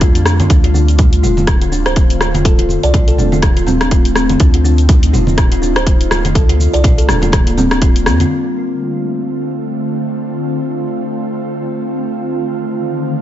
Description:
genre	afro house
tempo	123 BPM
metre	4/4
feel	swing 57% on 16ths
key	D phrygian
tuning	A4 = 439 Hz
part	ethereal airy pad	sustained chords	0.0-13.2 s	D3 to F4	-19 LUFS	equal	ensemble chorus, built-in reverb, sidechain pumping
part	kalimba	arpeggios	0.0-8.3 s	C4 to D5	-19 LUFS	equal	sidechain pumping, tape echo
part	warm sub bass	bass	0.0-8.2 s	D1 to G2	-15 LUFS	equal	sidechain pumping
part	electronic kick drum	drums	0.0-7.9 s	none	-11 LUFS	equal	none
part	house drum kit	drums	0.0-8.3 s	hi-hat, rim click, shaker	-19 LUFS	left 1 dB	none
part	congas	percussion	0.3-8.3 s	none	-20 LUFS	right 1 dB	none
room	light reverb, digital ambience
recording	nothing above 7.7 kHz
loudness	-11 LUFS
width	side -12 dB against mid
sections	0.0-8.3 A section; 8.3-13.2 B section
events	none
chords	0.0 G5; 0.5 Dm7; 4.4 F7/D; 6.4 Gm7; 8.3 Dm7; 12.2 F7/D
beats	0.01 | 0.50 0.99 1.48 1.96 | 2.45 2.94 3.43 3.92 | 4.40 4.89 5.38 5.87 | 6.35 6.84 7.33 7.82 | 8.30 8.79 9.28 9.77 | 10.26 10.74 11.23 11.72 | 12.21 12.70 13.18

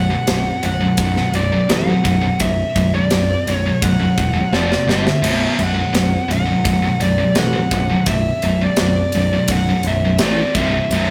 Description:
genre	heavy metal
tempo	84 BPM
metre	4/4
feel	straight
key	B minor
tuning	A4 = 437 Hz
part	high-gain lead guitar	melody	0.0-11.1 s	D5 to F#5	-24 LUFS	equal	distortion
part	distorted electric guitar	riff	0.0-11.1 s	B1 to A3	-24 LUFS	equal	distortion
part	scooped high-gain guitar	riff	0.0-11.1 s	B1 to A3	-23 LUFS	equal	distortion
part	modern bright picked electric bass	bass	0.0-11.1 s	B0 to A1	-24 LUFS	equal	none
part	tight metal drum kit	drums	0.3-11.1 s	crash cymbal, kick drum, ride cymbal, snare drum	-24 LUFS	equal	none
room	moderate stone room reverb, RT60 1.1 s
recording	rough rehearsal-room recording, tube saturation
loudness	-17 LUFS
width	mono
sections	0.0-11.1 A section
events	drum fill 4.5-5.2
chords	0.0 Bm; 4.5 F5; 4.9 G5; 5.2 Bm; 10.2 A5; 10.6 C5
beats	0.26 0.97 1.68 | 2.39 3.10 3.81 4.52 | 5.23 5.94 6.65 7.36 | 8.07 8.78 9.49 10.20 | 10.91

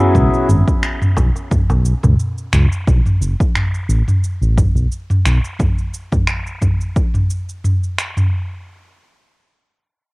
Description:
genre	organic downtempo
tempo	88 BPM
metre	4/4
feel	swing 54% on 16ths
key	unclear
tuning	A4 = 440 Hz
part	pedal harmonium	accompaniment	0.0-0.5 s	F#3 to G#4	-19 LUFS	left 2 dB	sidechain pumping, low-pass filter, cassette tape, tape echo
part	smooth synth bass	bass	0.1-5.4 s	F#1 to C#2	-15 LUFS	equal	sidechain pumping
part	electronic kick drum	drums	0.1-7.1 s	none	-17 LUFS	equal	none
part	darbuka	percussion	0.1-2.2 s	none	-20 LUFS	equal	none
part	deep house drum kit	drums	0.2-8.3 s	finger snaps, shaker, toms	-18 LUFS	equal	none
room	light reverb, digital ambience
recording	home recording on cassette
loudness	-14 LUFS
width	side -25 dB against mid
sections	0.0-8.3 A section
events	none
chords	0.0 C#m7; 2.9 B5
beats	| 0.14 0.82 1.50 2.19 | 2.87 3.55 4.23 4.92 | 5.60 6.28 6.96 7.64

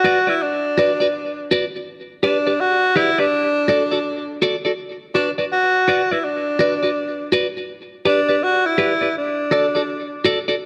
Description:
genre	reggae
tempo	82 BPM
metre	4/4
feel	swing 63% on 16ths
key	B minor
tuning	A4 = 440 Hz
part	breathy tenor saxophone	melody	0.0-10.2 s	D4 to F#4	-21 LUFS	equal	tape echo
part	clean electric guitar	accompaniment	0.0-10.5 s	F#4 to D5	-22 LUFS	equal	phaser, tape echo
room	moderate echo chamber reverb, RT60 1.8 s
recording	none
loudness	-19 LUFS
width	mono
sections	0.0-10.7 A section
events	none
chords	0.0 Bm; 1.9 G; 3.3 D; 4.8 Bm; 7.7 G; 9.2 D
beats	0.40 1.13 | 1.86 2.59 3.32 4.05 | 4.78 5.51 6.24 6.97 | 7.70 8.43 9.15 9.88

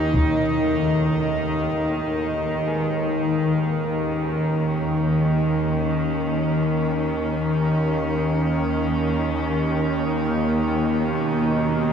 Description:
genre	ambient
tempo	free time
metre	none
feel	none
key	unclear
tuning	A4 = 442 Hz
part	warm studio cello section	sustained chords	0.0-11.9 s	D#2 to D#4	-24 LUFS	right 1 dB	none
part	carillon bells	arpeggios	0.0-8.8 s	D#3 to G#4	-39 LUFS	left 2 dB	none
part	bowed-like drone	drone	0.0-11.9 s	D#2 to D#3	-22 LUFS	left 1 dB	built-in reverb
part	quartz singing bowl	texture	0.0-11.9 s	none	barely audible	none	none
room	wet cathedral reverb, RT60 5.3 s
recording	none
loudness	-20 LUFS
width	side -7 dB against mid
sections	0.0-11.9 A section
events	none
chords	0.0 Amaj7#11/D#; 10.3 B/D#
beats	free time

